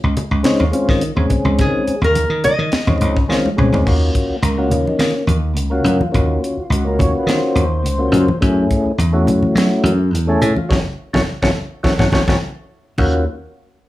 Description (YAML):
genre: electric jazz fusion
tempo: 105 BPM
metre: 4/4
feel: swing 53% on 16ths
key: Eb minor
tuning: A4 = 440 Hz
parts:
  - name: dry thumbed slap bass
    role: bass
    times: 0.0-13.2 s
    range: Gb1 to Gb3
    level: -17 LUFS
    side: equal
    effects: none
  - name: tight funk drum kit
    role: drums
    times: 0.2-13.1 s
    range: crash cymbal, hi-hat, kick drum, snare drum, toms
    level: -20 LUFS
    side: equal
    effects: none
  - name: congas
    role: percussion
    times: 0.2-13.2 s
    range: none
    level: -22 LUFS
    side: right 2 dB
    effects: none
  - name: percussive tonewheel organ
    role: accompaniment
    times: 0.4-13.2 s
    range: Ab3 to Db5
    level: -18 LUFS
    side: left 2 dB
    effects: slow rotary speaker, chorus vibrato, plate reverb
  - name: nylon-string guitar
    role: melody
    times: 1.6-3.5 s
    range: Ab4 to Eb5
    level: -19 LUFS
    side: equal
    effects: plate reverb
room: light reverb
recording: studio reverb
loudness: -14 LUFS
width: side -16 dB against mid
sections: 0.0-3.9 A section; 3.9-13.0 B section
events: drum fill 3.3-3.9, 11.8-13.0; band accent 10.7-13.0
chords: 0.0 Eb13sus4; 3.9 Ebm9; 8.4 Gbm9; 13.0 Ebm9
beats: 0.45 1.02 | 1.59 2.16 2.73 3.30 | 3.87 4.43 5.00 5.58 | 6.14 6.71 7.28 7.85 | 8.42 8.99 9.56 10.13 | 10.70 11.27 11.84 12.41 | 12.98